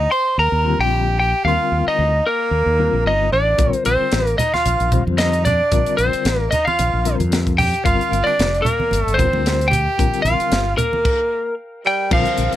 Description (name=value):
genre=electric jazz fusion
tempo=112 BPM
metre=4/4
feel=swing 55% on 16ths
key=Bb major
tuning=A4 = 440 Hz
part: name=lightly driven lead guitar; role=melody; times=0.0-12.5 s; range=Bb4 to C6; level=-19 LUFS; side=left 2 dB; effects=none
part: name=edgy tenor saxophone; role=second line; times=0.0-12.5 s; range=F3 to C5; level=-23 LUFS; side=right 8 dB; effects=none
part: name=mellow fretless electric bass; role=bass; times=0.0-12.6 s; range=F1 to F2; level=-20 LUFS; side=equal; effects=none
part: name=reed electric piano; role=accompaniment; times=0.6-12.6 s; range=D3 to C5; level=-24 LUFS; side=left 9 dB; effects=fast tremolo
part: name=tight funk drum kit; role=drums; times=3.6-12.6 s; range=crash cymbal, hi-hat, kick drum, snare drum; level=-22 LUFS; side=equal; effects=none
part: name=congas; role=percussion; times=4.4-11.0 s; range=none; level=-24 LUFS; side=right 2 dB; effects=none
room=light reverb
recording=none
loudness=-15 LUFS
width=side -13 dB against mid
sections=0.0-12.1 A section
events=none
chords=0.0 Ebmaj9; 3.6 Bbadd9; 7.8 Gm7; 10.0 Bb69